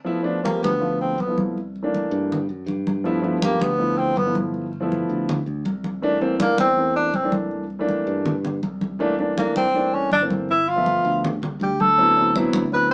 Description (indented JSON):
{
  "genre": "Afro-Cuban jazz",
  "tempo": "161 BPM",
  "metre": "4/4",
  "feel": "straight",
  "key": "G major",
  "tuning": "A4 = 440 Hz",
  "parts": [
    { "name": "dark upright piano", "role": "accompaniment", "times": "0.0-12.9 s", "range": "E3 to E5", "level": "-23 LUFS", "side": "equal", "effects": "none" },
    { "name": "congas", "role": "percussion", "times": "0.1-12.9 s", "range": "none", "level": "-26 LUFS", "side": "equal", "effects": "none" },
    { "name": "mellow tenor saxophone", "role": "melody", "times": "0.4-12.9 s", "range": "Bb3 to B4", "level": "-19 LUFS", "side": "equal", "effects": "none" },
    { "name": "modern bright fingered electric bass", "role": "bass", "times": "0.6-12.9 s", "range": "G1 to G2", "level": "-28 LUFS", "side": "equal", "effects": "none" }
  ],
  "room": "moderate studio reverb, RT60 0.5 s",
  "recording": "band playing live in one room, small speaker sound",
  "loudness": "-19 LUFS",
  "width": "side -36 dB against mid",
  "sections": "0.1-12.9 A section",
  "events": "tenor saxophone solo 0.1-12.9",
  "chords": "0.1 G13; 1.6 C13; 3.1 G13; 6.0 C13; 10.5 G13; 12.0 D13"
}